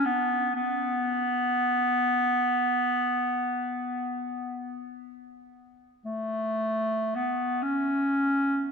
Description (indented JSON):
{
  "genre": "caucasian folk",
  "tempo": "free time",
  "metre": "none",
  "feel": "none",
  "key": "unclear",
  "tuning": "A4 = 441 Hz",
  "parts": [
    { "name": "mellow clarinet", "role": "solo", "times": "0.0-8.7 s", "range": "A3 to C#4", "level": "-25 LUFS", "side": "equal", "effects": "none" }
  ],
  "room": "moderate cathedral reverb, RT60 4.8 s",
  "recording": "minimal, uncompressed stereo recording",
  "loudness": "-25 LUFS",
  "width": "side -5 dB against mid",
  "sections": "0.0-8.7 A section",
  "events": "none",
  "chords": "none"
}